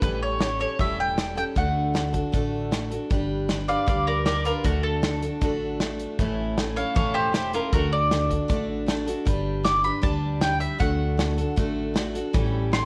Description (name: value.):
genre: honky-tonk and classic country.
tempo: 156 BPM.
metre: 4/4.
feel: straight.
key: G major.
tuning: A4 = 440 Hz.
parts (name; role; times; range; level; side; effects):
mandolin; melody; 0.0-12.9 s; F4 to D6; -29 LUFS; equal; none.
picked steel-string acoustic guitar; accompaniment; 0.0-12.9 s; A2 to B4; -31 LUFS; equal; none.
upright bass; bass; 0.0-12.9 s; E1 to D2; -32 LUFS; equal; none.
natural country drum kit; drums; 0.0-12.8 s; hi-hat, kick drum, snare drum; -29 LUFS; equal; none.
room: light reverb.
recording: worn, warbling old tape, cassette tape, warbly pitch drift.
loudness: -25 LUFS.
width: mono.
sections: 0.0-3.1 A section; 3.1-12.9 B section.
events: mandolin solo 3.1-12.9.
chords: 0.0 A7; 1.6 D; 3.1 G; 4.7 D; 6.2 A; 7.7 D; 9.3 G; 10.8 D; 12.3 A7.